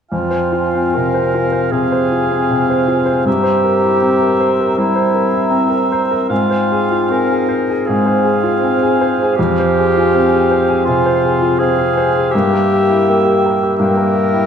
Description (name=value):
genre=classical, romantic movement for piano and orchestra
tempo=69-86 BPM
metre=4/4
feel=rubato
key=F minor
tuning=A4 = 439 Hz
part: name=clear baby grand piano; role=melody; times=0.1-14.5 s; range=F2 to C5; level=-15 LUFS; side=equal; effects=none
part: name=clear clarinet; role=second line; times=0.1-14.5 s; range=E4 to Bb4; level=-19 LUFS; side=left 3 dB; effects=none
part: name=mellow hollow small flute group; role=second line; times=0.1-14.5 s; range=G5 to Bb5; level=-22 LUFS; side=left 2 dB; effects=none
part: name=warm cor anglais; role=second line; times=0.1-14.5 s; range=E5 to F5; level=-22 LUFS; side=right 4 dB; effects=none
part: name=mellow bassoon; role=accompaniment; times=0.1-14.5 s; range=Bb3 to C4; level=-21 LUFS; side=right 4 dB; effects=none
room=wet recital hall reverb, RT60 1.4 s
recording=none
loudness=-12 LUFS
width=side -7 dB against mid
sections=0.1-14.5 A section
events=none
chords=0.1 Fm; 12.3 Edim/G